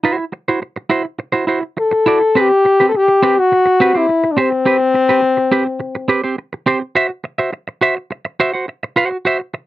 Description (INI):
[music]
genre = disco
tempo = 104 BPM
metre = 4/4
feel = straight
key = unclear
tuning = A4 = 440 Hz
[part]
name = semi-hollow electric guitar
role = accompaniment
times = 0.0-9.6 s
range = C4 to F#5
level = -15 LUFS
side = right 3 dB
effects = none
[part]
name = bright trombone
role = melody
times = 1.8-6.1 s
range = C4 to A4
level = -12 LUFS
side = left 2 dB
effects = none
[sound]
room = light reverb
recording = dry, close 1970s-style studio recording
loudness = -13 LUFS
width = side -15 dB against mid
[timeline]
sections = 0.0-9.7 A section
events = none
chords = 0.0 D9 (rootless); 2.4 Cmaj7(no3); 7.0 C